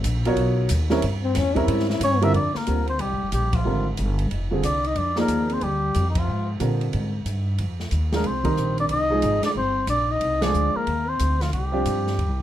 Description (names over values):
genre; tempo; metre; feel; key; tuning
modal jazz; 183 BPM; 4/4; swing 64% on 8ths; F dorian; A4 = 440 Hz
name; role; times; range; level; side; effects
upright bass; bass; 0.0-12.4 s; F1 to Bb2; -24 LUFS; equal; none
open jazz drum kit; drums; 0.0-12.3 s; hi-hat, kick drum, ride cymbal, snare drum; -32 LUFS; right 1 dB; none
warm baby grand piano; accompaniment; 0.3-12.2 s; D3 to D5; -25 LUFS; right 2 dB; none
breathy trombone; second line; 1.2-12.4 s; Eb3 to E4; -28 LUFS; left 5 dB; none
trumpet with cup mute; melody; 2.0-12.4 s; Eb4 to E5; -25 LUFS; equal; none
room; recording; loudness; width
light reverb; dark, warm production; -20 LUFS; side -12 dB against mid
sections
0.0-2.3 A section; 2.3-12.4 B section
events
trombone solo 0.0-2.3; band accent 3.5, 6.1, 10.4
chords
0.0 G#m11 (rootless); 1.0 C7b9; 2.3 Fm69; 7.6 Cm